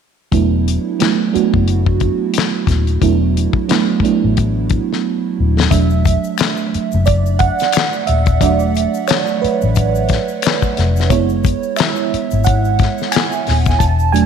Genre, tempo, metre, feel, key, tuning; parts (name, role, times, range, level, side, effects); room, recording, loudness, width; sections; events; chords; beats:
R&B, neo-soul; 89 BPM; 4/4; swing 57% on 16ths; E mixolydian; A4 = 437 Hz
FM electric piano with soft pad layer; accompaniment; 0.3-14.3 s; F#3 to A5; -16 LUFS; right 8 dB; chorus
vintage muted fingered electric bass; bass; 0.3-14.2 s; D#1 to A1; -16 LUFS; left 2 dB
damped 70s drum kit; drums; 0.3-14.3 s; handclaps, hi-hat, kick drum, snare drum; -17 LUFS; left 6 dB
egg shaker and finger snaps; percussion; 5.7-14.3 s; -29 LUFS; left 14 dB
moderate echo chamber reverb, RT60 1.5 s, studio reverb; 1960s-style stereo with parts hard left and right; -13 LUFS; side -7 dB against mid
0.3-5.7 A section; 5.7-14.3 B section
drum fill 5.0-5.7; FM electric piano solo 5.7-14.3
0.3 E9sus4; 11.1 F#9sus4
| 0.32 0.99 1.67 2.34 | 3.01 3.69 4.36 5.04 | 5.71 6.38 7.06 7.73 | 8.41 9.08 9.76 10.43 | 11.10 11.78 12.45 13.13 | 13.80